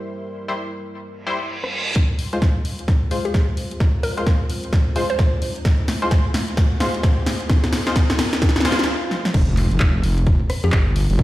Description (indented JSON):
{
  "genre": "bass house",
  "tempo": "130 BPM",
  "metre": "4/4",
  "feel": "swing 61% on 16ths",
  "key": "F harmonic minor",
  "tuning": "A4 = 440 Hz",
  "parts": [
    { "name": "dark analog pad", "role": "sustained chords", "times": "0.0-8.8 s", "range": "G3 to C5", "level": "-34 LUFS", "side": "equal", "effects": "chorus, sidechain pumping" },
    { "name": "band-passed chord stab", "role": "stabs", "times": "0.0-8.8 s", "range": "G3 to C5", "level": "-27 LUFS", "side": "left 2 dB", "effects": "chorus, sidechain pumping, dub echo" },
    { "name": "reverse cymbal, riser, swell and impact", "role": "sound effects", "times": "1.4-11.2 s", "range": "none", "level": "-30 LUFS", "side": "right 1 dB", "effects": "none" },
    { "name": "house drum kit", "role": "drums", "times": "1.6-11.2 s", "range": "crash cymbal, handclaps, hi-hat, rim click, snare drum", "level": "-24 LUFS", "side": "left 1 dB", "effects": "low-pass filter on snare, low-pass filter on hats, low-pass filter on cymbals" },
    { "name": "electronic kick drum", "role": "drums", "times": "2.0-11.2 s", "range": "none", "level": "-16 LUFS", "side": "equal", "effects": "none" },
    { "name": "hollow square pluck", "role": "melody", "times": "3.3-5.6, 10.6-10.8 s", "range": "Ab4 to C5", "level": "-28 LUFS", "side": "equal", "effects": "chorus, cassette tape, dub echo" },
    { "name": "wobble bass", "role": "bass", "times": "9.3-11.2 s", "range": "F1 to F2", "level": "-18 LUFS", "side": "equal", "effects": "chorus, sidechain pumping" }
  ],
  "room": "light reverb, digital ambience",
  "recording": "played on a big sound system in a bare room, stone room reverb",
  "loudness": "-17 LUFS",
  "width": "side -16 dB against mid",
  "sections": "0.0-2.0 A section; 2.0-9.3 B section; 9.3-11.2 C section",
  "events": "filter sweep on synth stab 0.0-2.0, 2.0-9.3; reverse cymbal 1.4-2.0; build-up 2.0-9.3; drum fill 2.0-8.9, 9.1; riser 2.0-8.9; swell 8.4-9.3; stop 8.9-9.3; drop 9.3-11.2; impact 9.3-11.2",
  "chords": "0.0 C; 2.0 Fm; 9.3 N.C."
}